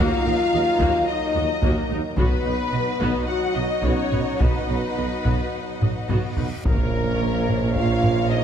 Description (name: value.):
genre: cinematic, epic orchestral film score.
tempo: 109 BPM.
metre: 4/4.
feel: straight.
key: unclear.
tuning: A4 = 439 Hz.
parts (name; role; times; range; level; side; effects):
rich symphonic violin section; melody; 0.0-8.4 s; Bb4 to F#5; -30 LUFS; left 4 dB; none.
rich symphonic violin section; second line; 0.0-8.4 s; Bb4 to F#5; -31 LUFS; left 4 dB; none.
rich symphonic viola section; accompaniment; 0.0-8.4 s; Bb3 to Eb5; -32 LUFS; equal; none.
bright trombone section; sustained chords; 0.0-8.4 s; F3 to Eb4; -33 LUFS; right 2 dB; none.
mellow French horn section; sustained chords; 0.0-8.4 s; Bb3 to F#4; -26 LUFS; left 1 dB; none.
warm symphonic string section; sustained chords; 0.0-8.4 s; Bb3 to Bb5; -33 LUFS; left 2 dB; none.
rich symphonic double bass section; bass; 0.0-8.4 s; Bb1 to Eb2; -29 LUFS; right 4 dB; none.
warm symphonic cello section; bass; 0.0-8.4 s; Eb2 to B2; -31 LUFS; right 3 dB; none.
warm tuba; bass; 0.0-8.4 s; Bb1 to Eb2; -29 LUFS; right 3 dB; none.
taiko ensemble; drums; 0.8-8.3 s; none; -24 LUFS; equal; none.
reverse cymbal and impact; sound effects; 6.1-8.4 s; none; -36 LUFS; equal; none.
mellow concert flute; second line; 6.6-8.4 s; Bb4 to F5; -32 LUFS; right 1 dB; none.
room: moderate concert hall reverb, RT60 2.3 s.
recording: dark, warm production.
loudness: -19 LUFS.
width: side -8 dB against mid.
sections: 0.0-6.6 A section; 6.6-8.4 B section.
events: drum fill 5.8-6.6; reverse cymbal 6.1-6.6; impact 6.6-8.4.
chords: 0.0 Ebm; 2.2 B; 6.6 Bbm.